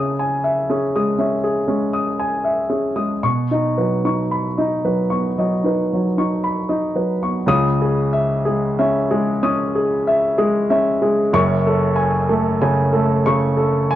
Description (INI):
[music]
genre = neoclassical minimalist piano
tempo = 56-64 BPM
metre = 4/4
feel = rubato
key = C# minor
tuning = A4 = 440 Hz
[part]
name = warm grand piano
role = solo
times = 0.0-14.0 s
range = F#1 to D#6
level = -16 LUFS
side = equal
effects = none
[sound]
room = light reverb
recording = worn, warbling old tape, cassette tape, warbly pitch drift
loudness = -16 LUFS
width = side -12 dB against mid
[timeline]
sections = 0.0-7.5 A section; 7.5-14.0 B section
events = none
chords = 0.0 C#madd9; 3.2 Badd9; 7.5 C#madd9; 11.3 F#madd9